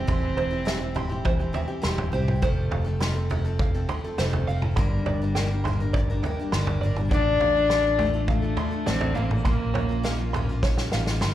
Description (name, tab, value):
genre	indie folk with a building arrangement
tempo	102 BPM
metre	4/4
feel	straight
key	F major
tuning	A4 = 440 Hz
part	warm cello	melody	0.0-1.5, 7.1-10.3 s	A3 to D4	-26 LUFS	left 2 dB	slapback echo
part	fingerpicked steel-string acoustic guitar	accompaniment	0.0-2.4 s	E3 to E4	-35 LUFS	left 1 dB	slapback echo
part	picked steel-string acoustic guitar	accompaniment	0.0-11.3 s	F2 to Bb4	-33 LUFS	left 3 dB	none
part	open-back banjo	arpeggios	0.0-11.3 s	C5 to C6	-34 LUFS	right 6 dB	slapback echo
part	fingered electric bass	bass	0.0-11.3 s	E1 to C2	-26 LUFS	equal	none
part	natural country drum kit	drums	0.1-11.3 s	kick drum, snare drum, toms	-27 LUFS	equal	none
room	small room ambience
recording	live gig heard through the venue's PA, club reverb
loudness	-22 LUFS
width	side -12 dB against mid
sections	0.0-11.3 A section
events	drum fill 10.6-11.3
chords	0.0 C/E; 2.4 F; 4.8 Gm; 7.1 Dm/A; 9.5 Bbm